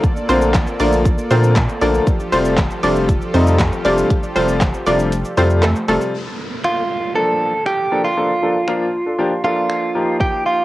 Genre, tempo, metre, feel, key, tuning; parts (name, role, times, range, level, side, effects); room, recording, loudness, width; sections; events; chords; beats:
dance-pop; 118 BPM; 4/4; straight; Bb major; A4 = 440 Hz
soft supersaw; sustained chords; 0.0-6.1 s; F3 to D5; -26 LUFS; right 1 dB; sidechain pumping, cassette tape
pop drum kit; drums; 0.0-10.3 s; finger snaps, handclaps, hi-hat, kick drum, shaker, snare drum; -20 LUFS; equal
analog pluck; melody; 0.3-6.0 s; A3 to D5; -21 LUFS; right 2 dB; chorus, sidechain pumping, cassette tape, analog delay
clear grand piano; accompaniment; 0.3-10.6 s; C3 to A4; -19 LUFS; left 2 dB; sidechain pumping, cassette tape
saturated sub bass; bass; 0.3-6.0 s; F1 to Bb2; -19 LUFS; equal; sidechain pumping
downlifter; sound effects; 6.1-10.2 s; -31 LUFS; equal
direct-recorded clean electric guitar; melody; 6.6-10.6 s; F4 to A4; -18 LUFS; right 2 dB; cassette tape
moderate spring reverb, RT60 1.3 s; home recording on cassette; -14 LUFS; side -16 dB against mid
0.0-6.1 A section; 6.1-10.6 B section
drop 0.0-6.1; kick muted 5.1-6.1
0.0 Bbmaj7; 2.1 Fadd9; 6.1 Bbmaj7; 10.0 Ebadd9
| 0.04 0.54 1.05 1.56 | 2.07 2.58 3.09 3.60 | 4.10 4.61 5.12 5.63 | 6.14 6.65 7.15 7.66 | 8.17 8.68 9.19 9.70 | 10.21